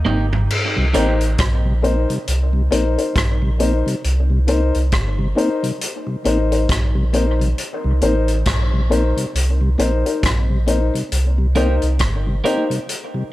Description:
dub reggae; 68 BPM; 4/4; swing 60% on 16ths; C dorian; A4 = 440 Hz
clean electric guitar; accompaniment; 0.0-1.1, 11.6-12.6 s; Bb3 to G4; -25 LUFS; right 4 dB; spring reverb, dub echo
mellow tonewheel organ; accompaniment; 0.0-13.2 s; C3 to Eb4; -25 LUFS; left 1 dB; chorus vibrato, slow rotary speaker, dub echo
warm sub bass; bass; 0.0-12.4 s; G1 to C2; -18 LUFS; equal
vintage drum kit; drums; 0.1-13.1 s; crash cymbal, hi-hat, kick drum, rim click, toms; -22 LUFS; equal
dark upright piano; stabs; 0.9-12.7 s; Eb4 to C5; -22 LUFS; left 3 dB; dub echo
little or no reverb; -16 LUFS; side -16 dB against mid
0.5-13.3 A section
break 0.0-0.5; drum fill 0.0-0.5
0.0 Cm7
| 0.51 1.39 2.27 3.16 | 4.04 4.93 5.81 6.70 | 7.58 8.47 9.35 10.23 | 11.12 12.00 12.89

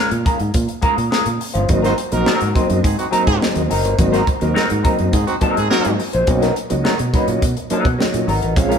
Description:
funk; 105 BPM; 4/4; straight; A4 = 440 Hz
semi-hollow electric guitar; accompaniment; 0.0-8.8 s; Gb3 to C5; -21 LUFS; left 1 dB; wah
fingered electric bass; bass; 0.1-8.8 s; Gb1 to B2; -21 LUFS; equal
crisp fusion drum kit; drums; 0.1-8.8 s; hi-hat, kick drum, snare drum; -20 LUFS; equal
tonewheel organ; stabs; 1.7-8.8 s; Gb3 to F4; -20 LUFS; equal; fast rotary speaker
clear horn section; second line; 1.8-5.9 s; C4 to C5; -24 LUFS; right 2 dB
moderate stone room reverb, RT60 1.5 s; band playing live in one room; -15 LUFS; side -7 dB against mid
0.0-8.8 A section
0.0 Bbm7; 1.7 Ab9; 6.3 Bmaj7
0.55 1.12 | 1.70 2.27 2.84 3.41 | 3.99 4.56 5.13 5.70 | 6.28 6.85 7.42 7.99 | 8.57

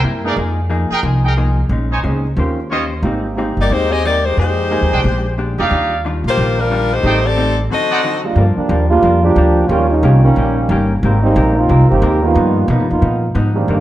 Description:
jazz; 180 BPM; 4/4; swing 62% on 8ths; Eb major; A4 = 438 Hz
vintage hollow-body jazz guitar; accompaniment; 0.0-13.8 s; G2 to C5; -22 LUFS; left 2 dB
upright bass; bass; 0.0-13.8 s; G1 to B2; -16 LUFS; equal
warm grand piano; accompaniment; 0.2-13.8 s; Eb3 to Bb4; -21 LUFS; right 4 dB
clear trumpet section; stabs; 0.3-2.8, 4.9-8.0 s; D4 to Ab5; -20 LUFS; right 2 dB
clear saxophone section; melody; 3.6-8.2 s; G3 to Eb5; -17 LUFS; left 3 dB
mellow trombone section; second line; 8.4-13.8 s; D3 to G4; -16 LUFS; right 2 dB
moderate large studio reverb, RT60 1.4 s; -12 LUFS; side -14 dB against mid
0.0-8.4 A section; 8.4-13.8 B section
break 7.7-8.4; trombone section solo 8.4-13.8
0.4 Fm11; 1.7 Bbm11; 2.4 Eb13; 3.0 Abmaj7; 4.4 Fm11; 5.0 Bb13; 5.7 Ebmaj9; 7.0 Am7b5; 7.7 D7b9; 8.4 Gm7; 9.7 Eb7; 11.0 Abmaj9; 12.4 G7alt
0.04 | 0.37 0.70 1.04 1.37 | 1.70 2.04 2.37 2.70 | 3.04 3.37 3.71 4.04 | 4.37 4.71 5.04 5.37 | 5.71 6.04 6.37 6.71 | 7.04 7.37 7.71 8.04 | 8.37 8.70 9.04 9.37 | 9.70 10.03 10.36 10.70 | 11.03 11.36 11.69 12.02 | 12.36 12.69 13.02 13.35 | 13.69

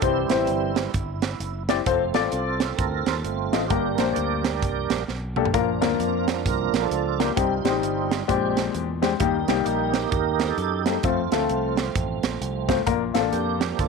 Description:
uptempo gospel; 131 BPM; 4/4; swing 61% on 8ths; Bb major; A4 = 440 Hz
warm baby grand piano; accompaniment; 0.0-13.6 s; G2 to Eb5; -24 LUFS; left 14 dB
tonewheel organ; sustained chords; 0.0-13.9 s; E3 to D5; -27 LUFS; right 12 dB; fast rotary speaker, chorus vibrato
fingered electric bass; bass; 0.0-13.9 s; F1 to Gb2; -31 LUFS; equal
crisp fusion drum kit; drums; 0.0-13.9 s; hi-hat, kick drum, snare drum, toms; -26 LUFS; right 5 dB
moderate spring reverb, RT60 1.4 s; 1960s-style stereo with parts hard left and right; -21 LUFS; side -4 dB against mid
0.0-13.9 A section
tonewheel organ solo 0.0-13.9; drum fill 5.1-5.5
0.0 C; 1.9 F; 3.7 Gm; 5.5 Bb; 7.4 Cm; 8.3 Bb13; 9.2 Eb; 11.0 F; 12.9 Bb
| 0.02 0.48 0.94 1.40 | 1.86 2.32 2.78 3.24 | 3.70 4.16 4.62 5.08 | 5.54 5.99 6.45 6.91 | 7.37 7.83 8.28 8.74 | 9.20 9.66 10.12 10.57 | 11.03 11.49 11.95 12.41 | 12.87 13.32 13.78

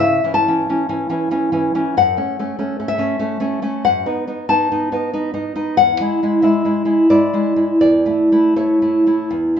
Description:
romantic piece for solo classical guitar; 80-97 BPM; 3/4; rubato; A major; A4 = 439 Hz
nylon-string guitar; solo; 0.0-9.6 s; E2 to A5; -15 LUFS; left 1 dB
moderate large studio reverb, RT60 1.0 s; band playing live in one room, nothing above 7.8 kHz; -15 LUFS; side -8 dB against mid
0.0-9.6 A section
0.0 A/C#; 2.0 F#m; 3.9 B7/F#; 5.8 E; 7.8 A/E
| 0.01 0.70 1.32 | 1.96 2.59 3.22 | 3.85 4.49 5.13 | 5.78 6.42 7.09 | 7.82 8.56 9.31

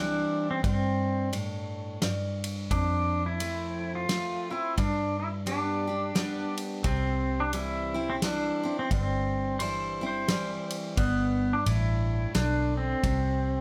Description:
honky-tonk and classic country; 87 BPM; 3/4; swing 61% on 8ths; C major; A4 = 443 Hz
pedal steel guitar; melody; 0.0-13.6 s; B3 to F4; -32 LUFS; equal
picked steel-string acoustic guitar; accompaniment; 0.0-13.6 s; F2 to G4; -36 LUFS; equal
vintage muted fingered electric bass; bass; 0.0-13.6 s; G1 to G2; -34 LUFS; equal
natural country drum kit; drums; 0.6-13.2 s; kick drum, ride cymbal, snare drum; -35 LUFS; equal
pedal steel guitar; second line; 9.6-10.7 s; C5; -35 LUFS; equal
moderate studio reverb, RT60 0.5 s; close, detailed microphones; -29 LUFS; mono
0.0-13.6 A section
0.0 C; 2.7 F; 4.8 G; 6.8 C; 11.0 G; 13.0 N.C.
| 0.64 1.33 2.02 | 2.71 3.40 4.09 | 4.78 5.47 6.16 | 6.84 7.53 8.22 | 8.91 9.60 10.29 | 10.97 11.66 12.35 | 13.04

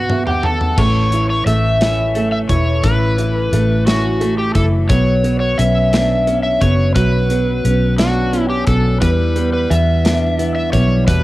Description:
six-eight pop ballad; 58 BPM (dotted quarters); 6/8; straight; A4 = 440 Hz
overdriven slide guitar; melody; 0.0-11.2 s; F#4 to E5; -19 LUFS; equal; cassette tape
dark upright piano; accompaniment; 0.0-11.2 s; B2 to A5; -21 LUFS; right 4 dB; cassette tape
vintage muted fingered electric bass; bass; 0.0-11.2 s; E1 to E2; -16 LUFS; equal
modern studio drum kit; drums; 0.1-11.2 s; crash cymbal, hi-hat, kick drum, snare drum, toms; -20 LUFS; equal
direct-recorded clean electric guitar; arpeggios; 0.8-11.2 s; E3 to D4; -25 LUFS; left 6 dB; cassette tape
moderate spring reverb, RT60 1.9 s, small room ambience; home recording on cassette; -13 LUFS; side -17 dB against mid
0.8-11.2 A section
drum fill 0.0-0.8; upright piano fill 0.0-0.8
0.0 B5; 0.8 A; 4.9 Bmadd9; 9.0 Em7
| 0.78 1.81 | 2.84 3.87 | 4.90 5.93 | 6.96 7.99 | 9.02 10.05 | 11.08

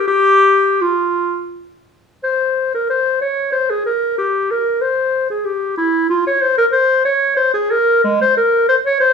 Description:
classical, baroque-style fantasia for unaccompanied clarinet; 80-98 BPM; 3/4; rubato; A4 = 440 Hz
clear clarinet; solo; 0.0-9.1 s; Ab3 to Db5; -13 LUFS; left 1 dB
light reverb; studio reverb; -13 LUFS; side -6 dB against mid
0.0-2.3 A section; 2.3-9.1 A section
| 0.09 0.81 1.53 | 2.25 2.91 3.53 | 4.17 4.81 5.45 | 6.10 6.74 7.37 | 8.04 8.68

